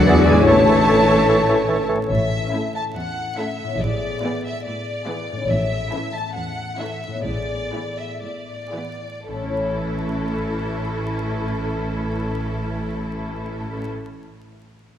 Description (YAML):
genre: classical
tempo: 107-151 BPM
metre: 4/4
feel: straight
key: A major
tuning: A4 = 440 Hz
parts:
  - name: rich symphonic violin section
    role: melody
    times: 0.0-13.9 s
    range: A4 to A5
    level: -28 LUFS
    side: left 2 dB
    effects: none
  - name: clear symphonic violin section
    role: second line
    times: 0.0-13.9 s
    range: E4 to D5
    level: -29 LUFS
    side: equal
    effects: none
  - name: concert flute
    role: second line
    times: 0.0-1.9 s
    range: F#5 to A5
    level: -27 LUFS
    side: equal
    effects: none
  - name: clear symphonic viola section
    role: accompaniment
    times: 0.0-13.9 s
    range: E3 to F#4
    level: -29 LUFS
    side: right 2 dB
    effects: none
  - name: mellow French horn section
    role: sustained chords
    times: 0.0-1.9 s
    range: G#4 to D5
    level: -21 LUFS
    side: left 2 dB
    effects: none
  - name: concert harp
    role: arpeggios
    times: 0.0-14.2 s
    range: A2 to E5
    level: -25 LUFS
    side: left 4 dB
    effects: none
  - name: clear symphonic cello section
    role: bass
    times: 0.0-13.9 s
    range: E2 to A3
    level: -27 LUFS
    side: right 2 dB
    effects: none
  - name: clear symphonic double bass section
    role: bass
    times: 0.0-13.9 s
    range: A1 to E2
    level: -24 LUFS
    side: right 1 dB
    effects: none
  - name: warm clarinet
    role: second line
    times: 0.1-2.0 s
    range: G#4 to A4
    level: -25 LUFS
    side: right 2 dB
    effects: none
  - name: warm oboe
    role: second line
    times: 0.1-2.0 s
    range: C#5 to D5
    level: -26 LUFS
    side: right 1 dB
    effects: none
  - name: warm bassoon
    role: accompaniment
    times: 0.1-2.0 s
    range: E3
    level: -25 LUFS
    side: right 2 dB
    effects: none
room: wet concert hall reverb, RT60 2.0 s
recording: vinyl crackle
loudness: -19 LUFS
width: side -10 dB against mid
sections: 0.0-2.1 A section; 2.1-9.3 B section; 9.3-13.4 C section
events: slowing down 4.7-9.3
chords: 0.1 E9; 0.5 A; 3.8 E7/A; 5.5 A; 7.2 E7/A; 9.3 A